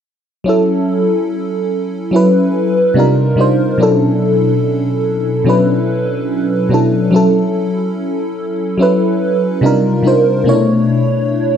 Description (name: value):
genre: R&B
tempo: 72 BPM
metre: 4/4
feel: swing 58% on 16ths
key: F# minor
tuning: A4 = 441 Hz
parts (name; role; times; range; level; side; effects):
- FM electric piano with soft pad layer; solo; 0.4-11.6 s; B2 to C#5; -12 LUFS; equal; chorus, phaser
room: moderate lush hall reverb, RT60 2.9 s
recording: none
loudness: -12 LUFS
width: side -8 dB against mid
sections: 0.5-11.6 A section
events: none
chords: 0.5 F#m7; 3.0 Cm11; 3.8 Bm11; 7.1 F#m7; 9.6 Cm11; 10.5 Bm11